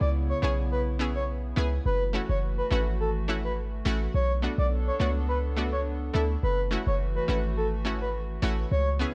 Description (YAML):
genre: dancehall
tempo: 105 BPM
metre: 4/4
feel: straight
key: F# minor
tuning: A4 = 439 Hz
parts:
  - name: breathy flute-like synth lead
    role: melody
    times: 0.0-8.9 s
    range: A4 to D5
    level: -34 LUFS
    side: equal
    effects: chorus, digital delay
  - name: hollow soft pad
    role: sustained chords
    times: 0.0-9.1 s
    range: C#3 to A4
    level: -40 LUFS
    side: equal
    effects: chorus
  - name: warm 808-style bass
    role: bass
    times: 0.0-9.1 s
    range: F#1 to D2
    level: -30 LUFS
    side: equal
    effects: none
  - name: analog pluck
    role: accompaniment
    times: 0.4-9.1 s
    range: A3 to G#4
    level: -36 LUFS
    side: equal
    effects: chorus
room: light reverb, digital ambience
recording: none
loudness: -28 LUFS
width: mono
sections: 0.0-9.1 A section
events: none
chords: 0.0 C#m7; 1.9 F#m7; 4.1 Bm7; 6.4 F#m7